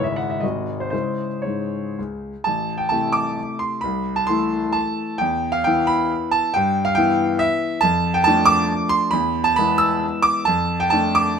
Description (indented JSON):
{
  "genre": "classical, romantic triple-time dance for piano with dotted rhythms",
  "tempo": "110-148 BPM",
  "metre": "3/4",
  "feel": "rubato",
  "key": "A minor",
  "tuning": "A4 = 438 Hz",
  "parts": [
    { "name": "clear grand piano", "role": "solo", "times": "0.0-11.4 s", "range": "G#1 to E6", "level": "-18 LUFS", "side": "equal", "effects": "none" }
  ],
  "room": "moderate stone room reverb, RT60 1.3 s",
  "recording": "none",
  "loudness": "-18 LUFS",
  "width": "side -6 dB against mid",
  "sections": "0.0-2.5 A section; 2.5-11.4 B section",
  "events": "none",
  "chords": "0.4 G#7; 0.9 C#m; 2.5 Am; 3.8 Am/C; 5.2 E5; 6.5 Em/G; 7.8 Dm/F; 9.1 E; 10.5 Dm/F",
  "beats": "0.43 | 0.93 1.45 1.98 | 2.46 2.91 3.38 | 3.82 4.28 4.75 | 5.19 5.65 6.11 | 6.54 6.97 7.41 | 7.83 8.25 8.70 | 9.13 9.58 10.03 | 10.45 10.91 11.39"
}